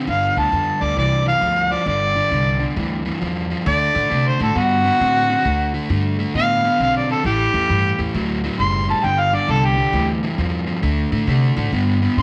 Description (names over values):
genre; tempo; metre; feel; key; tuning
electric blues shuffle; 134 BPM; 4/4; swing 65% on 8ths; unclear; A4 = 440 Hz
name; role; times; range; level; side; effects
overdriven semi-hollow guitar; riff; 0.0-12.2 s; G2 to C4; -25 LUFS; equal; none
mellow harmonica; melody; 0.1-12.2 s; F#4 to C6; -21 LUFS; equal; overdrive, slapback echo
upright bass; bass; 0.1-12.2 s; F#1 to C3; -24 LUFS; equal; none
room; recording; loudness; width
moderate spring reverb, RT60 1.4 s, small room ambience; none; -19 LUFS; mono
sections
0.0-12.2 A section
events
harmonica solo 0.0-12.2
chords
0.1 G5; 3.7 D7; 7.2 A5; 9.0 G5; 10.8 D5